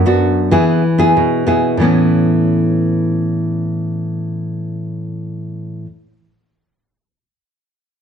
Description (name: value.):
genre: samba.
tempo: 94 BPM.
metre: 4/4.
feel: straight.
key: A major.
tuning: A4 = 442 Hz.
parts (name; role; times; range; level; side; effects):
nylon-string guitar; solo; 0.0-5.9 s; F#2 to G#4; -14 LUFS; equal; none.
room: wet large studio reverb, RT60 1.1 s.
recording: dark, warm production.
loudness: -13 LUFS.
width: side -7 dB against mid.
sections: 0.0-1.8 A section; 1.8-4.4 B section.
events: none.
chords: 0.0 Bm; 0.5 E; 1.8 Aadd9.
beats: 0.53 1.17 | 1.81 2.45 3.09 3.73.